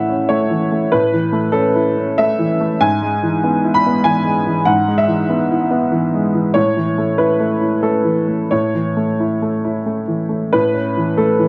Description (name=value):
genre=neoclassical minimalist piano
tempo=95 BPM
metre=3/4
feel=rubato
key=unclear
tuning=A4 = 439 Hz
part: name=warm upright piano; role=solo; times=0.0-11.5 s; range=G#2 to B5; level=-16 LUFS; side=equal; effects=none
room=moderate recital hall reverb, RT60 1.7 s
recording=close, detailed microphones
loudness=-17 LUFS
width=mono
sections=0.0-10.5 A section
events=none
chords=0.0 A; 2.8 E/G#; 6.5 A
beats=0.28 | 0.91 1.54 2.18 | 2.81 3.43 4.05 | 4.67 5.29 5.92 | 6.55 7.18 7.83 | 8.51 9.20 9.87 | 10.53 11.17